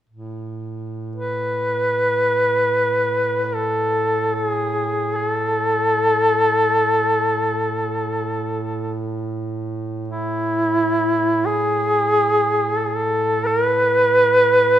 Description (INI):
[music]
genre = caucasian folk, Caucasian lament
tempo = free time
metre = none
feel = none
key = unclear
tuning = A4 = 440 Hz
[part]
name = warm duduk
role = drone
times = 0.1-14.8 s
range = A2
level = -27 LUFS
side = right 3 dB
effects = none
[part]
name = warm duduk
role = melody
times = 1.2-14.8 s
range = E4 to B4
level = -17 LUFS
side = equal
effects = none
[sound]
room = moderate church reverb, RT60 2.4 s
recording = minimal, uncompressed stereo recording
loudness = -17 LUFS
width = side -11 dB against mid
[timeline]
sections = 0.1-14.8 A section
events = none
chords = none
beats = free time